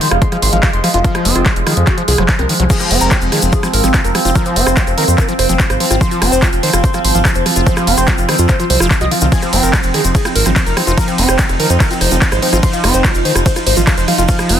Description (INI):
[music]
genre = psychedelic trance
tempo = 145 BPM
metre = 4/4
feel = straight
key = F minor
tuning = A4 = 438 Hz
[part]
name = overdriven synth lead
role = melody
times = 0.0-14.6 s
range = F3 to Eb5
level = -19 LUFS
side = equal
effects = phaser, sidechain pumping, ping-pong delay
[part]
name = overtone-sweeping drone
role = sustained chords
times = 0.0-14.6 s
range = F3 to Eb4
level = -20 LUFS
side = right 2 dB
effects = chorus, built-in reverb, sidechain pumping
[part]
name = overdriven acid bass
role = riff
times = 0.0-14.6 s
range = Eb3 to Gb4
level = -20 LUFS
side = equal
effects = distortion, auto-pan, sidechain pumping, tape echo
[part]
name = drum and bass drum kit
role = drums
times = 0.0-14.6 s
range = crash cymbal, handclaps, hi-hat, ride cymbal, rim click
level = -17 LUFS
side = right 1 dB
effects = overdrive
[part]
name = round analog bass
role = bass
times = 0.1-14.6 s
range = F1 to F2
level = -16 LUFS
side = equal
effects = none
[part]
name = electronic kick drum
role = drums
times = 0.2-14.4 s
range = none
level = -14 LUFS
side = equal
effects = none
[part]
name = egg shaker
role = percussion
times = 2.7-14.5 s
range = none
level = -24 LUFS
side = left 4 dB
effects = none
[part]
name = vowel-sweep wobble bass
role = second line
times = 4.7-5.1, 11.3-11.5 s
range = Bb3 to C4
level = -31 LUFS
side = right 4 dB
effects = none
[sound]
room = little or no reverb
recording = dense, heavily limited modern master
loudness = -10 LUFS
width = side -9 dB against mid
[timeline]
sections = 0.0-14.6 A section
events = none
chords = 0.0 F5